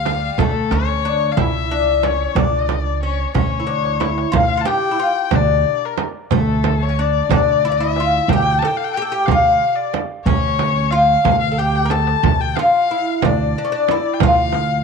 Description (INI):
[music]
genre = Arabic maqam ensemble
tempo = 61 BPM (dotted quarters)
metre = 6/8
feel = straight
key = D maqam nahawand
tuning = A4 = 440 Hz
[part]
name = oud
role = melody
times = 0.0-14.8 s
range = G3 to Bb4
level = -19 LUFS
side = left 1 dB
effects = none
[part]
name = clear erhu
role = second line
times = 0.0-14.8 s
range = A4 to A5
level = -22 LUFS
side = left 12 dB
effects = none
[part]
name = upright bass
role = bass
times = 0.0-14.8 s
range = C#2 to D2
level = -21 LUFS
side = right 2 dB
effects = none
[part]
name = darbuka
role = percussion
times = 0.1-14.7 s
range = none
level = -25 LUFS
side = left 6 dB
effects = none
[part]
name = frame drum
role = percussion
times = 0.1-14.7 s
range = none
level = -20 LUFS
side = right 14 dB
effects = none
[sound]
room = moderate spring reverb, RT60 2.0 s, studio reverb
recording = 1960s-style stereo with parts hard left and right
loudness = -15 LUFS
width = side -5 dB against mid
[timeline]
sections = 0.0-4.3 A section; 4.3-14.8 B section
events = drum fill 3.7-4.3, 11.6-12.2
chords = none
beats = | 0.38 1.37 | 2.36 3.35 | 4.34 5.32 | 6.31 7.30 | 8.29 9.28 | 10.26 11.25 | 12.24 13.23 | 14.21